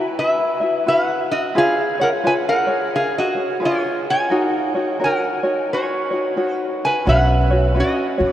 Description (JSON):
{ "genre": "Hawaiian", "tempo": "87 BPM", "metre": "4/4", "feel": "swing 64% on 8ths", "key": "unclear", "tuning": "A4 = 440 Hz", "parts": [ { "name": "metal-body resonator slide guitar", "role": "melody", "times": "0.0-8.3 s", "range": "E#4 to G#5", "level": "-19 LUFS", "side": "equal", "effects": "none" }, { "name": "tenor ukulele", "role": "accompaniment", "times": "0.0-8.3 s", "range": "C#4 to E5", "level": "-21 LUFS", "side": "equal", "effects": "none" }, { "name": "upright bass", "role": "bass", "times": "7.1-8.3 s", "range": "B1 to F#2", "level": "-17 LUFS", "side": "right 1 dB", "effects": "none" } ], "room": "wet huge ambient reverb, RT60 7.4 s", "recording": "in a vast, echoing space", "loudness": "-16 LUFS", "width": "side -12 dB against mid", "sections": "0.0-8.3 A section", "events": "none", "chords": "0.0 Esus2; 1.6 C#7; 4.3 F#6; 7.1 Bsus2", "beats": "0.18 0.87 | 1.56 2.25 2.94 3.63 | 4.32 5.01 5.70 6.39 | 7.08 7.76" }